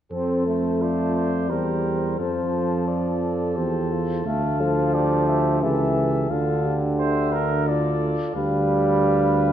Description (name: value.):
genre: classical, brass quintet.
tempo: 88 BPM.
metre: 3/4.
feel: straight.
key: F major.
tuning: A4 = 440 Hz.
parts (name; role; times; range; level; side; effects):
dark trumpet; melody; 0.1-9.5 s; C5 to F5; -29 LUFS; left 8 dB; none.
warm flugelhorn; second line; 0.1-9.5 s; G4 to C5; -31 LUFS; right 5 dB; none.
clear trombone; accompaniment; 0.1-9.5 s; D3 to C4; -25 LUFS; right 2 dB; none.
warm French horn; accompaniment; 0.1-9.5 s; F4 to A4; -30 LUFS; left 2 dB; none.
mellow tuba; bass; 0.1-9.5 s; C#2 to F2; -24 LUFS; right 1 dB; none.
room: moderate scoring stage reverb, RT60 2.0 s.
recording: none.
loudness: -20 LUFS.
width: side -10 dB against mid.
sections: 0.1-9.5 A section.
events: none.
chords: 0.1 F; 1.5 C7/E; 2.2 F; 4.3 Dm; 5.6 A7/C#; 6.3 Dm; 8.4 G7/D.